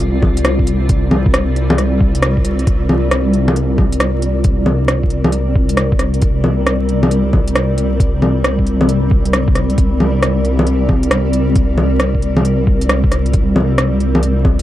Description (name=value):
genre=future garage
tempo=135 BPM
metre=4/4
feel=swing 65% on 16ths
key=unclear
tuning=A4 = 440 Hz
part: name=granular cloud pad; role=sustained chords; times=0.0-14.6 s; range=G3 to D5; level=-19 LUFS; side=equal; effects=built-in reverb, sidechain pumping
part: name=swelling detuned saw bass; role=bass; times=0.0-14.6 s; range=C2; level=-16 LUFS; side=equal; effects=sidechain pumping
part: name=organic electronic drum kit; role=drums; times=0.0-14.6 s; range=bongos, hi-hat, rim click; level=-17 LUFS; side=equal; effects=overdrive, vintage 12-bit sampler grit
part: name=electronic kick drum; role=drums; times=0.2-14.6 s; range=none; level=-15 LUFS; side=equal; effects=vintage 12-bit sampler grit
room=little or no reverb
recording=vinyl crackle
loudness=-12 LUFS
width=side -14 dB against mid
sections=0.0-2.7 A section; 2.7-14.6 B section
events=band accent 2.2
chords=0.0 Csus2